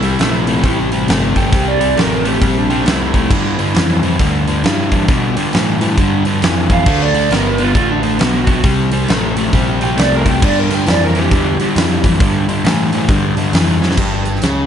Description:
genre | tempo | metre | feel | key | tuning
blues rock power trio and southern rock | 135 BPM | 4/4 | swing 63% on 8ths | G mixolydian | A4 = 440 Hz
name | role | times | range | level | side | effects
lead guitar through a small cranked amp | second line | 0.0-12.0 s | D4 to G5 | -19 LUFS | right 5 dB | overdrive
overdriven semi-hollow guitar | riff | 0.0-14.7 s | G2 to B3 | -16 LUFS | left 1 dB | none
growling picked electric bass | bass | 0.0-14.7 s | G1 to B2 | -19 LUFS | equal | overdrive
huge arena drum kit | drums | 0.0-14.6 s | crash cymbal, hi-hat, kick drum, snare drum | -17 LUFS | equal | none
room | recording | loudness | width
light reverb | nothing above 11.0 kHz | -12 LUFS | side -8 dB against mid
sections
0.0-14.0 A section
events
lead electric guitar solo 0.0-14.0; drum fill 13.8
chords
0.0 C7; 3.3 G7(no3); 6.9 D; 8.6 C5; 10.4 G5; 14.0 N.C.

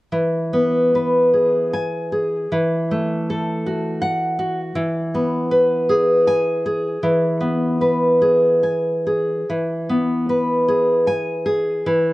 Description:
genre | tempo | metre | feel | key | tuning
romantic piece for solo classical guitar | 66-84 BPM | 3/4 | rubato | E major | A4 = 440 Hz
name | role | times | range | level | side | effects
nylon-string guitar | solo | 0.1-12.1 s | E3 to G#5 | -17 LUFS | equal | none
room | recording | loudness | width
moderate spring reverb, RT60 1.4 s | worn, warbling old tape, cassette tape, warbly pitch drift | -17 LUFS | side -18 dB against mid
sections
0.1-9.5 A section; 9.5-12.1 B section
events
none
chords
0.1 E; 2.5 F#m7/E; 4.8 E

